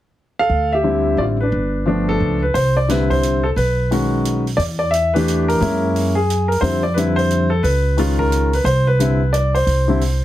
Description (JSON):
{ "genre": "jazz piano trio", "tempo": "177 BPM", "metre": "3/4", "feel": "swing 64% on 8ths", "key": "C major", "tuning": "A4 = 440 Hz", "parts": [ { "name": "warm grand piano", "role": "melody", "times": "0.4-10.2 s", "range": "D3 to F5", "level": "-17 LUFS", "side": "left 1 dB", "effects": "none" }, { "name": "upright bass", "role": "bass", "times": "0.5-10.2 s", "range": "G1 to F#2", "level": "-19 LUFS", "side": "right 1 dB", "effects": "none" }, { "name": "open jazz drum kit", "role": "drums", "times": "2.6-10.1 s", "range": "hi-hat, kick drum, snare drum", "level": "-31 LUFS", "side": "right 4 dB", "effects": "none" } ], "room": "light reverb", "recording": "heavily compressed radio sound", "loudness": "-15 LUFS", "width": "side -13 dB against mid", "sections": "0.5-2.6 A section; 2.6-10.2 B section", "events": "none", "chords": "0.0 N.C.; 0.5 Dm7; 1.5 G7; 2.6 C; 3.6 B; 4.6 Em7; 5.6 F#9; 6.6 F5; 7.6 Db7; 8.7 N.C.", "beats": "0.16 | 0.51 0.85 1.19 | 1.53 1.87 2.21 | 2.55 2.89 3.23 | 3.57 3.91 4.25 | 4.59 4.93 5.27 | 5.61 5.94 6.28 | 6.62 6.96 7.30 | 7.64 7.98 8.31 | 8.65 8.99 9.33 | 9.67 10.01" }